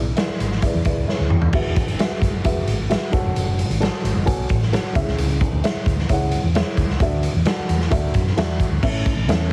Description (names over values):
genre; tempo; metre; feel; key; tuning
uptempo 1960s-style soul; 132 BPM; 4/4; straight; unclear; A4 = 442 Hz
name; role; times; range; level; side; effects
dark upright piano; accompaniment; 0.0-9.5 s; A2 to A5; -28 LUFS; equal; none
woody fretless electric bass; bass; 0.0-9.5 s; E1 to F#2; -24 LUFS; equal; lush chorus
raw garage drum kit; drums; 0.2-9.4 s; crash cymbal, hi-hat, kick drum, snare drum, toms; -23 LUFS; equal; none
room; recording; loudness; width
light reverb; heavily compressed radio sound, multiband compression, vinyl crackle; -20 LUFS; mono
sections
0.0-1.5 A section; 1.5-8.8 B section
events
drum fill 1.1-1.5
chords
0.0 E7; 1.5 Eadd9; 3.1 F#m; 5.0 C#m; 7.0 Dadd9; 8.8 A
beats
0.17 0.63 1.08 | 1.54 2.00 2.45 2.91 | 3.36 3.82 4.27 4.73 | 5.18 5.64 6.09 6.55 | 7.01 7.46 7.92 8.37 | 8.83 9.28